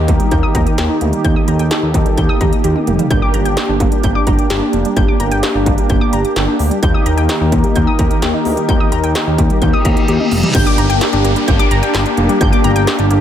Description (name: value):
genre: synth-pop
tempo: 129 BPM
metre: 4/4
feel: straight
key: G minor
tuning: A4 = 442 Hz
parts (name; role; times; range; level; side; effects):
- mellow synth brass; accompaniment; 0.0-13.2 s; Bb3 to G4; -18 LUFS; right 1 dB; chorus, shimmer reverb
- warm analog pad; sustained chords; 0.0-13.2 s; Eb3 to Bb4; -21 LUFS; left 1 dB; lush chorus, shimmer reverb
- warbly dusty pluck; arpeggios; 0.0-13.2 s; G3 to G6; -21 LUFS; left 3 dB; chorus, ping-pong delay, shimmer reverb
- smooth synth bass; bass; 0.0-13.2 s; F1 to Eb2; -17 LUFS; equal; none
- industrial drum kit; drums; 0.1-13.2 s; crash cymbal, handclaps, hi-hat, kick drum, snare drum, toms; -16 LUFS; equal; distortion
- reverse cymbal and downlifter; sound effects; 9.8-13.2 s; none; -23 LUFS; equal; none
room: light reverb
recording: none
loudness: -11 LUFS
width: side -10 dB against mid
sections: 0.0-10.5 A section; 10.5-13.2 B section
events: drum fill 2.6-3.1, 10.1-10.5; reverse cymbal 9.8-10.5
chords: 0.0 Eb; 3.1 Gm; 6.8 Eb; 10.5 Gm